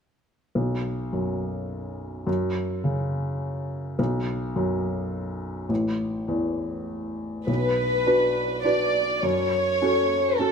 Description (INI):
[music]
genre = neoclassical piano and strings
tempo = 104 BPM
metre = 3/4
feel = rubato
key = B minor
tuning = A4 = 441 Hz
[part]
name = felt-muted upright piano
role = accompaniment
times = 0.6-10.5 s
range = A1 to B4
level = -25 LUFS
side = equal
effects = none
[part]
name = warm chamber violin section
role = melody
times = 7.5-10.5 s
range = A4 to D5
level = -22 LUFS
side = left 1 dB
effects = none
[sound]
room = moderate recital hall reverb, RT60 1.7 s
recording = none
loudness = -23 LUFS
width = side -6 dB against mid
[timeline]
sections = 0.5-7.5 A section; 7.5-10.5 B section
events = none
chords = 0.5 B5; 2.3 F#5; 4.0 B5; 5.7 A5; 7.5 Bm; 9.2 F#m